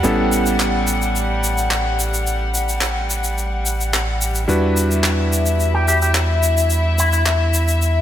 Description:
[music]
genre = nu-disco, nu disco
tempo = 108 BPM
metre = 4/4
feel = straight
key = unclear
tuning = A4 = 439 Hz
[part]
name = bright electric grand piano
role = accompaniment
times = 0.0-8.0 s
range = G3 to B4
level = -22 LUFS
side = equal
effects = dub echo
[part]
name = warm studio string section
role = sustained chords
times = 0.0-8.0 s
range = G3 to F#5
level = -22 LUFS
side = left 3 dB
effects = low-pass filter
[part]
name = chorused synth bass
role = bass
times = 0.0-8.0 s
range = A1 to E2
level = -20 LUFS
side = equal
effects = none
[part]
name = shaker and handclaps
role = drums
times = 0.0-7.9 s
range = none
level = -22 LUFS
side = left 1 dB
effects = none
[part]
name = electric guitar with an envelope filter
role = melody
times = 5.7-7.2 s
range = E4 to G4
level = -23 LUFS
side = equal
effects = spring reverb, dub echo
[sound]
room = light reverb, small room ambience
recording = none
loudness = -16 LUFS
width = side -11 dB against mid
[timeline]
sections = 0.0-8.0 A section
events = none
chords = 0.0 A7; 4.5 Em9

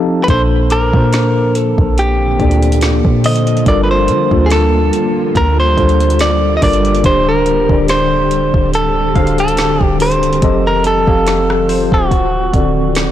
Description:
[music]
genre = contemporary R&B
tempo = 71 BPM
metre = 4/4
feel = swing 54% on 16ths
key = G minor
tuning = A4 = 443 Hz
[part]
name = mellow tine electric piano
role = accompaniment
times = 0.0-13.1 s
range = Bb2 to A5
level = -16 LUFS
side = left 2 dB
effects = medium stereo tremolo
[part]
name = glassy wavetable pluck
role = texture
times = 0.0-12.5 s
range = C5 to Eb6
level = -28 LUFS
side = left 2 dB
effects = chorus, tape echo
[part]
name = direct-recorded clean electric guitar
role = melody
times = 0.2-13.1 s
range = F#4 to Eb5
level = -15 LUFS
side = equal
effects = tape echo
[part]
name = granular cloud pad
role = sustained chords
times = 1.4-13.1 s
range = D3 to G4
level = -22 LUFS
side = equal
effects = built-in reverb
[part]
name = warm 808-style bass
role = bass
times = 0.3-13.1 s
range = C1 to D3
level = -16 LUFS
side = equal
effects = none
[part]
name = smooth R&B drum kit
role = drums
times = 0.3-13.1 s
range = hi-hat, kick drum, rim click, snare drum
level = -17 LUFS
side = equal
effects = none
[sound]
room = light reverb, digital ambience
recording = blown-out, overdriven recording, overdrive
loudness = -10 LUFS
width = side -11 dB against mid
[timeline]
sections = 0.0-13.1 A section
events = break 0.0; tine electric piano fill 0.0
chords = 0.3 Bbmaj9; 3.7 Gm7; 7.0 D7sus4; 10.4 F7; 12.1 D7

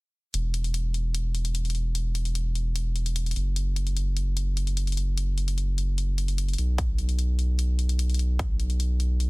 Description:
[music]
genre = future bass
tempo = 149 BPM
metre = 4/4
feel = half-time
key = unclear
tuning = A4 = 441 Hz
[part]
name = saturated sub bass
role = bass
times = 0.3-9.3 s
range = E1 to B1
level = -25 LUFS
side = equal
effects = sidechain pumping
[part]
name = electronic hi-hat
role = drums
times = 0.3-9.3 s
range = none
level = -35 LUFS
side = left 4 dB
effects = none
[part]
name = electronic kick drum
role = drums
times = 6.8-8.5 s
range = none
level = -28 LUFS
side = equal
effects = none
[sound]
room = digital ambience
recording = dense, heavily limited modern master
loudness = -24 LUFS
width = side -26 dB against mid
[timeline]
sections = 0.3-9.3 A section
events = none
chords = none

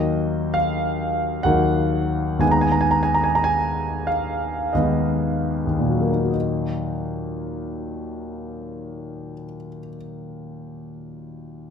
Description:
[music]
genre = classical, romantic nocturne for solo piano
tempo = 35-71 BPM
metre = 3/4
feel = rubato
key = Eb minor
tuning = A4 = 439 Hz
[part]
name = warm concert grand piano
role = solo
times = 0.0-11.7 s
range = Eb2 to Bb5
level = -21 LUFS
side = equal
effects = none
[sound]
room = light reverb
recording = close, detailed microphones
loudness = -19 LUFS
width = side -7 dB against mid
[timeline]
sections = 0.0-6.3 A section; 6.3-10.5 B section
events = slowing down 0.0-6.3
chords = 0.0 Ebm; 2.4 Abm/Eb; 6.3 Ebm

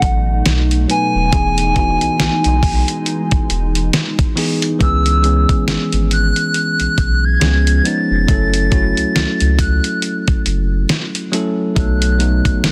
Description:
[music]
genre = contemporary R&B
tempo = 69 BPM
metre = 4/4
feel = swing 58% on 16ths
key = C# minor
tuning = A4 = 438 Hz
[part]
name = hollow clarinet-like synth lead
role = melody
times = 0.0-12.7 s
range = F#5 to A6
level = -22 LUFS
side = equal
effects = chorus, delay
[part]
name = bell-like tine electric piano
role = accompaniment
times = 0.0-12.7 s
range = E3 to B4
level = -22 LUFS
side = equal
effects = none
[part]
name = glassy FM pad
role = sustained chords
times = 0.0-4.8, 12.6-12.7 s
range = B2 to D#4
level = -29 LUFS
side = equal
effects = ensemble chorus, built-in reverb, sidechain pumping
[part]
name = warm sub bass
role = bass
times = 0.0-12.7 s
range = D#1 to C#2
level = -19 LUFS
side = equal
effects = none
[part]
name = dusty soul sampler-style drum kit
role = drums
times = 0.0-12.7 s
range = hi-hat, kick drum, snare drum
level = -20 LUFS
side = equal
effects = none
[sound]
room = little or no reverb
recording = dense, heavily limited modern master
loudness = -16 LUFS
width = mono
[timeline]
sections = 0.0-4.8 A section; 4.8-12.7 A section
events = none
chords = 0.0 B7; 1.3 Emaj7; 4.8 C#m7; 7.4 C#7; 8.3 F#m7; 11.8 B7

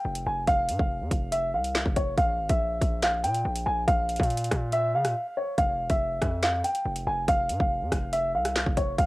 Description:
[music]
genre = hip hop, drill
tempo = 141 BPM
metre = 4/4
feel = half-time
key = unclear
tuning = A4 = 440 Hz
[part]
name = dark upright piano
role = melody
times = 0.0-9.1 s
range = Db5 to Ab5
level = -26 LUFS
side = equal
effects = low-pass filter, cassette tape
[part]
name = distorted 808-style bass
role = bass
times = 0.0-9.1 s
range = E1 to Db3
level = -32 LUFS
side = equal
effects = distortion
[part]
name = drill drum kit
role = drums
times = 0.2-9.1 s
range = handclaps, hi-hat, kick drum, rim click, snare drum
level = -27 LUFS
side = equal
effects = none
[sound]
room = little or no reverb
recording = home recording on cassette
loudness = -24 LUFS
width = side -20 dB against mid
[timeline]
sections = 0.0-9.1 A section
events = break 5.2-5.6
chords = 0.0 F5; 2.2 Bb5; 5.6 N.C.

